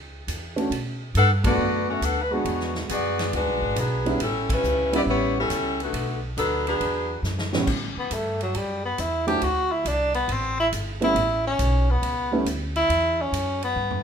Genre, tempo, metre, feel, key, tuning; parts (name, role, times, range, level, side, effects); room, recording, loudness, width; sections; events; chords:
jazz, big band swing; 138 BPM; 4/4; swing 68% on 8ths; A mixolydian; A4 = 440 Hz
upright bass; bass; 0.0-14.0 s; G1 to B2; -28 LUFS; equal
swinging big-band drum kit; drums; 0.3-14.0 s; crash cymbal, hi-hat, kick drum, ride cymbal, snare drum, toms; -32 LUFS; right 1 dB
warm grand piano; accompaniment; 0.6-12.5 s; A2 to F#4; -26 LUFS; right 2 dB
clear saxophone section; melody; 1.2-7.2 s; D3 to F#5; -24 LUFS; left 2 dB
clear tenor saxophone; melody; 8.0-14.0 s; F#3 to G4; -23 LUFS; equal
moderate large studio reverb, RT60 1.1 s; minimal, uncompressed stereo recording; -22 LUFS; side -7 dB against mid
0.0-7.7 A section; 7.7-14.0 B section
band accent 1.4, 4.4; drum fill 7.2-7.7, 13.8; tenor saxophone solo 7.7-14.0
0.0 A; 0.7 Bm7; 2.5 E9; 4.2 A9; 5.9 Bm7; 6.8 E9; 7.7 A5; 9.4 Dsus2; 11.2 A9